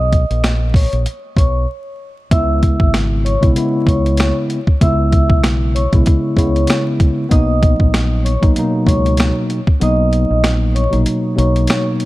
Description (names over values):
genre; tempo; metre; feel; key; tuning
hip hop, boom-bap hip-hop; 96 BPM; 4/4; swing 56% on 16ths; C# dorian; A4 = 440 Hz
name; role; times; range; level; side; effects
vibraphone with soft mallets; melody; 0.0-11.8 s; C#5 to E6; -22 LUFS; equal; high-pass filter, low-pass filter, tape echo
deep dub fingered electric bass; bass; 0.0-11.7 s; G#1 to C#2; -16 LUFS; equal; none
boom bap sampler-style drum kit; drums; 0.1-12.1 s; hi-hat, kick drum, rim click, snare drum; -15 LUFS; equal; none
mellow tine electric piano; accompaniment; 2.3-12.1 s; B2 to E4; -17 LUFS; equal; fast stereo tremolo, cassette tape, high-pass filter, low-pass filter
room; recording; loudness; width
light reverb; dark, warm production, vinyl crackle; -12 LUFS; side -18 dB against mid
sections
0.0-2.3 A section; 2.3-12.1 B section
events
break 0.0-2.3; kick muted 9.8-12.1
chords
0.0 Bmaj7; 2.3 C#m7; 7.3 Bmaj7